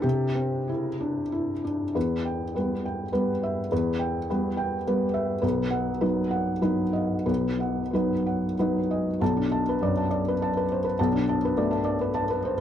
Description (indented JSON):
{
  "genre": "neoclassical minimalist piano",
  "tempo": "90-106 BPM",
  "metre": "3/4",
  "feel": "rubato",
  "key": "E minor",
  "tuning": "A4 = 441 Hz",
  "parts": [
    { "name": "felt-muted upright piano", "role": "solo", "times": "0.0-12.6 s", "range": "B1 to A5", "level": "-24 LUFS", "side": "equal", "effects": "tape echo" }
  ],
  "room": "light reverb",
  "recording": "dry, close 1970s-style studio recording",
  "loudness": "-24 LUFS",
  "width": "side -10 dB against mid",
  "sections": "0.0-2.0 A section; 2.0-9.2 B section; 9.2-12.6 C section",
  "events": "none",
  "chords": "0.0 Cadd9; 2.0 Em; 5.4 B; 9.2 Bm7",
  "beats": "| 0.03 0.70 1.33 | 1.95 2.55 3.13 | 3.71 4.29 4.86 | 5.43 6.02 6.63 | 7.28 7.93 8.58 | 9.21 9.80 10.39 | 10.98 11.57 12.15"
}